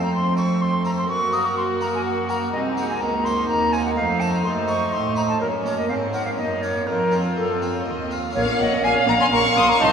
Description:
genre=classical, baroque-style concerto movement with solo episodes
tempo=125 BPM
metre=3/4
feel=straight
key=Bb minor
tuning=A4 = 444 Hz
part: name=bright concert flute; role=melody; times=0.0-9.9 s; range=A4 to Eb6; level=-24 LUFS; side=equal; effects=none
part: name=rich chamber violin section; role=melody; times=0.0-9.9 s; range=Gb4 to Eb6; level=-28 LUFS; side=left 3 dB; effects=none
part: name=warm chamber violin section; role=second line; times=0.0-9.9 s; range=C4 to F5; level=-26 LUFS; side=equal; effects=none
part: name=harpsichord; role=accompaniment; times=0.0-9.9 s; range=C2 to C5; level=-30 LUFS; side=right 1 dB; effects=none
part: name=rich chamber viola section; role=accompaniment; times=0.0-9.9 s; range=A3 to Eb4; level=-27 LUFS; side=right 1 dB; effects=none
part: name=rich chamber cello section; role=bass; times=0.0-9.9 s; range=C2 to C3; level=-27 LUFS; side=right 3 dB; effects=none
part: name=rich symphonic double bass section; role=bass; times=8.3-9.9 s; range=Bb1 to C2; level=-31 LUFS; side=right 3 dB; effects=none
room=wet cathedral reverb, RT60 4.7 s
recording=recorded in a church or concert hall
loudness=-19 LUFS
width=side -7 dB against mid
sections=0.0-8.4 A section; 8.4-9.9 B section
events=none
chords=0.0 F; 1.1 Gb; 2.5 Cm7b5; 4.0 F7; 5.4 Gb; 6.9 F; 8.4 Bbm

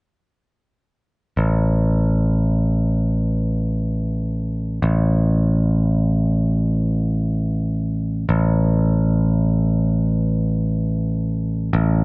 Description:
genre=progressive instrumental, progressive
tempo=free time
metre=none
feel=none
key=unclear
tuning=A4 = 440 Hz
part: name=modern bright picked electric bass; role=bass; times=1.4-12.0 s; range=A1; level=-17 LUFS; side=equal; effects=none
room=little or no reverb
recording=worn, warbling old tape, cassette tape, warbly pitch drift, nothing above 10.5 kHz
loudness=-17 LUFS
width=side -34 dB against mid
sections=1.4-12.0 A section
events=none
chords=none

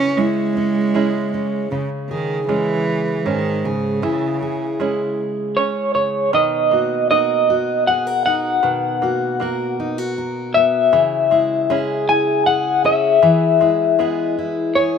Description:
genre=acoustic folk duo or small band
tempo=78 BPM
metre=3/4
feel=straight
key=unclear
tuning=A4 = 439 Hz
part: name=warm cello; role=second line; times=0.0-5.2 s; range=C#3 to C#4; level=-21 LUFS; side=right 4 dB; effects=none
part: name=fingerpicked steel-string acoustic guitar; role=accompaniment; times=0.0-15.0 s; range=G#2 to A#4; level=-21 LUFS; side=left 1 dB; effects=none
part: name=open-back banjo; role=arpeggios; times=0.0-15.0 s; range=D#3 to F#4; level=-28 LUFS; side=right 7 dB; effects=none
part: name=electric guitar through a small old amp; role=melody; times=5.6-15.0 s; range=C#5 to G#5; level=-16 LUFS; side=left 3 dB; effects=tremolo
room=light reverb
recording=rough home demo mix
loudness=-16 LUFS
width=side -6 dB against mid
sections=0.0-1.7 A section; 1.7-6.3 B section; 6.3-15.0 C section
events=cello solo 0.0-1.7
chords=0.0 C#m; 6.3 Bmaj7; 10.9 C#m; 13.2 E

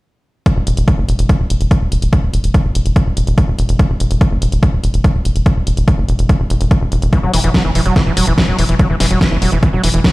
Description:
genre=psychedelic trance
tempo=144 BPM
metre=4/4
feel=straight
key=unclear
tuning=A4 = 441 Hz
part: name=big-room dance drum kit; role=drums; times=0.5-10.1 s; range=hi-hat, snare drum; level=-21 LUFS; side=equal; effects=none
part: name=electronic kick drum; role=drums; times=0.5-10.1 s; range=none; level=-12 LUFS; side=equal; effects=none
part: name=tight sequencer bass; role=bass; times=0.6-10.0 s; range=E1 to F#1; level=-15 LUFS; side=equal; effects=none
part: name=overdriven acid bass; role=riff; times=7.1-10.1 s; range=E3 to F#3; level=-17 LUFS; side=right 1 dB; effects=distortion, auto-pan, sidechain pumping, tape echo
room=digital ambience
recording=played on a big sound system in a bare room, large studio reverb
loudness=-12 LUFS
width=side -21 dB against mid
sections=0.5-10.1 A section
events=none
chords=0.5 Esus2

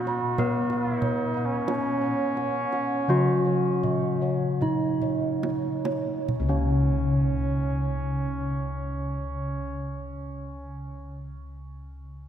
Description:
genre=Javanese gamelan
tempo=34-49 BPM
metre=4/4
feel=straight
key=unclear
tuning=A4 = 440 Hz
part: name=gamelan-type bronze metallophone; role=melody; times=0.0-11.4 s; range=Db4 to Cb5-45c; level=-30 LUFS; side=right 1 dB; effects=none
part: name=warm flugelhorn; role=second line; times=0.0-11.2 s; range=Db4 to Gb4-37c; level=-33 LUFS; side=right 2 dB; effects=none
part: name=gamelan-type bronze metallophone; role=accompaniment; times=0.0-11.4 s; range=Db3 to Cb4-45c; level=-32 LUFS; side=left 1 dB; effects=none
part: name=gamelan-type bronze metallophone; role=arpeggios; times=0.0-11.4 s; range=Db5 to Cb6-45c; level=-36 LUFS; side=right 6 dB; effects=none
part: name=gamelan-type bossed gongs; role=bass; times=0.0-11.3 s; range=Db2 to Cb5-45c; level=-29 LUFS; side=equal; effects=none
part: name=gamelan-type bossed gongs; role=arpeggios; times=0.1-11.4 s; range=Db5 to Cb6-45c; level=-37 LUFS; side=left 2 dB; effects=none
part: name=kendang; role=percussion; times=0.1-7.1 s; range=none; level=-35 LUFS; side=right 2 dB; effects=none
room=wet cathedral reverb, RT60 6.0 s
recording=recorded in a church or concert hall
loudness=-24 LUFS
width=side -9 dB against mid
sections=0.0-6.3 A section; 6.3-12.3 B section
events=slowing down 0.0-6.3; drum fill 4.6-6.3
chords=none

